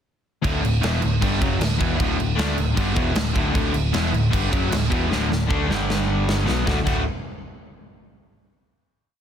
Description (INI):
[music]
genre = punk rock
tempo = 154 BPM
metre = 4/4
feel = straight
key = D major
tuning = A4 = 440 Hz
[part]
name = cranked stack guitar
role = riff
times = 0.4-7.0 s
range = D2 to D4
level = -27 LUFS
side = right 10 dB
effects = overdrive
[part]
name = crunchy overdriven guitar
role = riff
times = 0.4-7.0 s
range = D2 to F#4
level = -25 LUFS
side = left 8 dB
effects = none
[part]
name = distorted electric guitar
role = riff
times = 0.4-7.0 s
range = D2 to F#4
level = -28 LUFS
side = equal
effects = overdrive
[part]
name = overdriven picked electric bass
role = bass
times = 0.4-7.0 s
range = D1 to D2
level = -25 LUFS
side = equal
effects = none
[part]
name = big rock drum kit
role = drums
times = 0.4-7.0 s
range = crash cymbal, kick drum, snare drum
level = -24 LUFS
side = equal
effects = none
[sound]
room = little or no reverb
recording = dense, heavily limited modern master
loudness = -19 LUFS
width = side -8 dB against mid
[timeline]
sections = 0.4-6.7 riff; 6.7-8.2 final chord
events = drum fill 5.1-6.7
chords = 0.4 D; 5.7 G5; 6.5 B5; 6.7 D